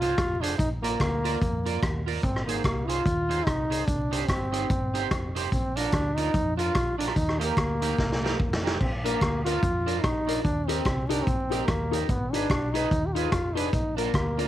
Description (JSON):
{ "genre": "ska", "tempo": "146 BPM", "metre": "4/4", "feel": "swing 59% on 8ths", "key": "unclear", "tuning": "A4 = 440 Hz", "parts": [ { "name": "clear trombone", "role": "melody", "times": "0.0-14.5 s", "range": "Bb3 to G4", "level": "-29 LUFS", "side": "equal", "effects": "none" }, { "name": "electric guitar at the edge of break-up", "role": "accompaniment", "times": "0.0-14.5 s", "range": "D4 to D5", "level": "-33 LUFS", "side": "right 12 dB", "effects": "wide subtle chorus" }, { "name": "hollow-body short-scale fingered electric bass", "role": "bass", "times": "0.0-14.5 s", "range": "F1 to F2", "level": "-31 LUFS", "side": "equal", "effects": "none" }, { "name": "vintage drum kit", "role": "drums", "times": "0.0-14.5 s", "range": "crash cymbal, hi-hat, kick drum, rim click, snare drum", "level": "-28 LUFS", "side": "equal", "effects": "none" }, { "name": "warm upright piano", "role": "stabs", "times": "9.0-14.5 s", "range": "D4 to Cb5", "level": "-33 LUFS", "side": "left 11 dB", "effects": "none" } ], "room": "light reverb", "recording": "1960s-style stereo with parts hard left and right, vinyl crackle", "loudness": "-24 LUFS", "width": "side -13 dB against mid", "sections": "0.0-14.5 A section", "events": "drum fill 8.0-8.8", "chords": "0.0 Fm; 0.6 Bb; 2.2 Ab; 3.9 Cm; 5.5 Bb; 7.2 Eb; 8.8 Bb; 10.4 Eb; 12.1 Abm; 13.7 Bb", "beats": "0.18 | 0.59 1.00 1.41 1.82 | 2.23 2.65 3.06 3.47 | 3.88 4.29 4.70 5.11 | 5.52 5.93 6.34 6.75 | 7.16 7.57 7.98 8.39 | 8.80 9.22 9.63 10.04 | 10.45 10.86 11.27 11.68 | 12.09 12.50 12.91 13.32 | 13.73 14.14" }